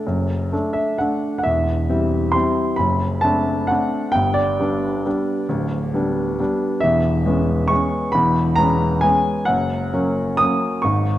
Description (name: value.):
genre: classical, piano waltz.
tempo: 133 BPM.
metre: 3/4.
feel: rubato.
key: G major.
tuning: A4 = 436 Hz.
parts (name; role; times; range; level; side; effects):
clear grand piano; solo; 0.0-11.2 s; D1 to D#6; -17 LUFS; equal; none.
room: wet concert hall reverb, RT60 2.1 s.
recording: dark, warm production.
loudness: -17 LUFS.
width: side -13 dB against mid.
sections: 0.0-11.2 A section.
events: none.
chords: 0.0 D/F#; 1.4 C/E; 2.8 D7/F#; 4.2 G; 6.8 C#m7/E; 9.5 F#.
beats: | 0.07 0.52 0.99 | 1.45 1.89 2.35 | 2.80 3.24 3.70 | 4.15 4.60 5.06 | 5.49 5.93 6.39 | 6.83 7.26 7.71 | 8.15 8.59 9.04 | 9.49 9.94 10.40 | 10.85.